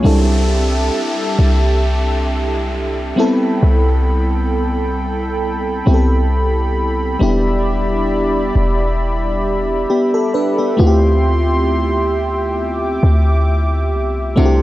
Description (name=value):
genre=contemporary R&B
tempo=67 BPM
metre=4/4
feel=swing 54% on 16ths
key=C major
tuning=A4 = 441 Hz
part: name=FM electric piano with soft pad layer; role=accompaniment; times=0.0-14.6 s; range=G3 to B4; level=-18 LUFS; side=left 1 dB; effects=chorus
part: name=warm analog pad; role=sustained chords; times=0.0-14.6 s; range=G4 to D6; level=-21 LUFS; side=right 1 dB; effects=chorus
part: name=nylon-string guitar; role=arpeggios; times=0.0-0.1, 14.4-14.6 s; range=C3 to F4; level=-29 LUFS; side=right 2 dB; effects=tape echo
part: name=warm 808-style bass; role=bass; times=0.0-14.6 s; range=E1 to D2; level=-16 LUFS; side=equal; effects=transformer saturation
part: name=downlifter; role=sound effects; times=0.0-7.2 s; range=none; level=-29 LUFS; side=equal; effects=none
room=light reverb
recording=dry, gritty hardware recording, cassette tape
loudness=-14 LUFS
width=side -16 dB against mid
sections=0.0-14.6 A section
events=none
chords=0.0 C6; 3.2 Am9/C; 7.2 Em7; 10.8 Dm11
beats=| 0.04 0.94 1.83 2.73 | 3.63 4.52 5.42 6.31 | 7.21 8.10 9.00 9.89 | 10.79 11.69 12.58 13.48 | 14.37